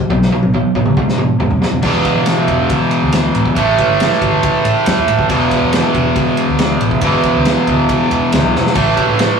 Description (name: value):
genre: blues rock power trio and southern rock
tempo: 138 BPM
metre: 4/4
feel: straight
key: unclear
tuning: A4 = 441 Hz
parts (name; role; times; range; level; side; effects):
- cranked stack guitar; riff; 0.0-9.4 s; E2 to A3; -13 LUFS; right 1 dB; overdrive, spring reverb
- vintage muted fingered electric bass; bass; 0.1-9.3 s; E1 to E3; -20 LUFS; equal; none
- vintage drum kit; drums; 0.1-9.3 s; crash cymbal, kick drum, ride cymbal, snare drum, splash cymbal, toms; -18 LUFS; equal; none
room: moderate small room reverb, RT60 0.6 s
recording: rough rehearsal-room recording, warm saturation, small room ambience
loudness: -11 LUFS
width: side -6 dB against mid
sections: 0.0-1.8 A section; 1.8-9.4 B section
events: drum fill 0.1-1.8, 8.5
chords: 0.1 B5; 1.8 E5; 3.6 A5; 5.3 E7(no3); 8.8 A5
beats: | 0.10 0.53 0.97 1.40 | 1.83 2.27 2.70 3.13 | 3.56 4.00 4.43 4.86 | 5.30 5.73 6.16 6.60 | 7.03 7.46 7.90 8.33 | 8.76 9.20